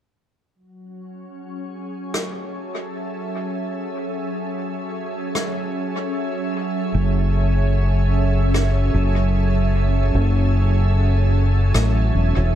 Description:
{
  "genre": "ambient dub",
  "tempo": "75 BPM",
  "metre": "4/4",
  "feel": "swing 55% on 16ths",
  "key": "F# minor",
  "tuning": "A4 = 440 Hz",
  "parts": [
    { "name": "soft additive organ-like pad", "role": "sustained chords", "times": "0.8-12.6 s", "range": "F#3 to E5", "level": "-24 LUFS", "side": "right 2 dB", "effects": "ensemble chorus, built-in reverb" },
    { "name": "rim click", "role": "drums", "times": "2.1-11.9 s", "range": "none", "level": "-28 LUFS", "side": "left 1 dB", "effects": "dub echo" },
    { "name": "fingered electric bass", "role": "bass", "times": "6.9-12.6 s", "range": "E1 to A1", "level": "-17 LUFS", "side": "equal", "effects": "low-pass filter" }
  ],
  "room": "studio reverb",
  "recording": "echo-heavy mix",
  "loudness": "-18 LUFS",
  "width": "side -11 dB against mid",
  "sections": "0.5-12.6 A section",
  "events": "none",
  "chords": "0.5 F#m7"
}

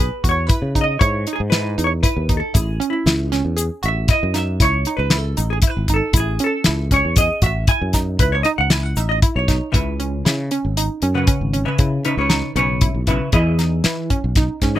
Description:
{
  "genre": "progressive instrumental, band music in an uneven meter",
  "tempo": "117 BPM",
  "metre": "7/4",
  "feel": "straight",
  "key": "A lydian",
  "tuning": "A4 = 440 Hz",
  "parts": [
    { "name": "hollow-body jazz guitar", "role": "accompaniment", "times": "0.0-14.8 s", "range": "C#3 to G#5", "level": "-21 LUFS", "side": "equal", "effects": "double-tracked left and right" },
    { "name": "glassy wavetable pluck", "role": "arpeggios", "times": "0.0-14.8 s", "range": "C#4 to G#4", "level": "-25 LUFS", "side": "right 3 dB", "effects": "chorus" },
    { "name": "sustaining fretless electric bass", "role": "bass", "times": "0.0-14.8 s", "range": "G#1 to E3", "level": "-21 LUFS", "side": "equal", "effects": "none" },
    { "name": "damped 70s drum kit", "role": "drums", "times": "0.2-14.7 s", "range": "hi-hat, kick drum, snare drum", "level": "-17 LUFS", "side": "equal", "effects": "none" },
    { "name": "egg shaker", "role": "percussion", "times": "2.6-9.2 s", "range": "none", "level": "-30 LUFS", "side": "left 6 dB", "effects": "none" }
  ],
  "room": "little or no reverb",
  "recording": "none",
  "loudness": "-16 LUFS",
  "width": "side -13 dB against mid",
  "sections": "0.0-9.7 A section; 9.7-14.8 B section",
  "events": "hollow-body jazz guitar solo 0.0-9.7",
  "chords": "0.0 Emaj7; 2.6 Amaj7; 9.7 C#m7; 13.3 Emaj7"
}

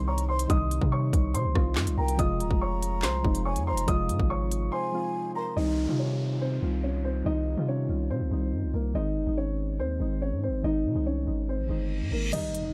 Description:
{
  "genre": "hip hop, drill",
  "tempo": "142 BPM",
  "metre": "4/4",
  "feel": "half-time",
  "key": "C phrygian",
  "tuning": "A4 = 440 Hz",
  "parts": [
    { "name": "dark concert grand piano", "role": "melody", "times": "0.0-12.7 s", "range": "Bb3 to Eb6", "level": "-35 LUFS", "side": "equal", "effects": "delay" },
    { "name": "breathy mellow concert flute", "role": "second line", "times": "0.0-5.6 s", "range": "G5 to C6", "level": "-39 LUFS", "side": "equal", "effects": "delay" },
    { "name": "soft electric-piano-like synth keys", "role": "accompaniment", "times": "0.0-12.7 s", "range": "C3 to F4", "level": "-35 LUFS", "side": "equal", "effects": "chorus" },
    { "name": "long sustained 808-style bass", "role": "bass", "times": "0.0-12.3 s", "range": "Eb1 to C3", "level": "-31 LUFS", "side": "equal", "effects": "none" },
    { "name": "drill drum kit", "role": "drums", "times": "0.2-4.6, 12.3-12.6 s", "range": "crash cymbal, handclaps, hi-hat, kick drum, rim click, snare drum", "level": "-30 LUFS", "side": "equal", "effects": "none" },
    { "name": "downlifter, reverse cymbal and impact", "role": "sound effects", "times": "5.6-8.9, 11.8-12.7 s", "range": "none", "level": "-43 LUFS", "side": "equal", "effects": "none" }
  ],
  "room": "little or no reverb",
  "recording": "dark, warm production",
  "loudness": "-28 LUFS",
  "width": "mono",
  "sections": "0.0-5.6 A section; 5.6-12.3 B section",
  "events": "break 4.7-5.6; reverse cymbal 11.8-12.3; kick muted 12.3-12.7; impact 12.3-12.7",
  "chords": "0.0 Cm; 2.2 Fm; 5.6 Cm; 8.9 Ab"
}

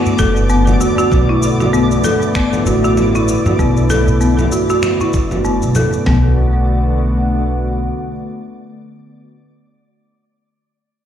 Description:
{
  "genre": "organic downtempo",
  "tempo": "97 BPM",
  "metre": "4/4",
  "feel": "swing 57% on 16ths",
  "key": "B minor",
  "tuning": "A4 = 440 Hz",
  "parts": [
    { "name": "warm analog pad", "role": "sustained chords", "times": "0.0-9.3 s", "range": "D3 to F#4", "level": "-20 LUFS", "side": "equal", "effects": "wide subtle chorus, sidechain pumping" },
    { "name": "folk marimba with hard mallets", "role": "arpeggios", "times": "0.0-6.4 s", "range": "B3 to A4", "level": "-17 LUFS", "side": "equal", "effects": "low-pass filter, digital delay" },
    { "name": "twinkling granular texture", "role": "texture", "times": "0.0-6.1 s", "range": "D5 to D6", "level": "-27 LUFS", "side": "left 2 dB", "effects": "built-in reverb" },
    { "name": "dusty soul sampler-style drum kit", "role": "drums", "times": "0.1-6.0 s", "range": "finger snaps, shaker, toms", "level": "-21 LUFS", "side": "equal", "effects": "none" },
    { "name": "udu", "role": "percussion", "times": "0.1-5.1 s", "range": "none", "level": "-21 LUFS", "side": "left 1 dB", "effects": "none" },
    { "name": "upright bass", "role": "bass", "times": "0.2-7.9 s", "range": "F#1 to E2", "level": "-16 LUFS", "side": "equal", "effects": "sidechain pumping" },
    { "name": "dusty soul sampler-style drum kit", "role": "drums", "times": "0.2-6.2 s", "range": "kick drum, snare drum, toms", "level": "-18 LUFS", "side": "equal", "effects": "none" }
  ],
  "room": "moderate concert hall reverb, RT60 2.2 s",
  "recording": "played on a big sound system in a bare room, stone room reverb",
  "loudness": "-12 LUFS",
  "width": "side -10 dB against mid",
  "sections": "0.0-6.1 A section; 6.1-8.5 B section",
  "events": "filter sweep on marimba 0.0-6.1",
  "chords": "0.0 Bm7"
}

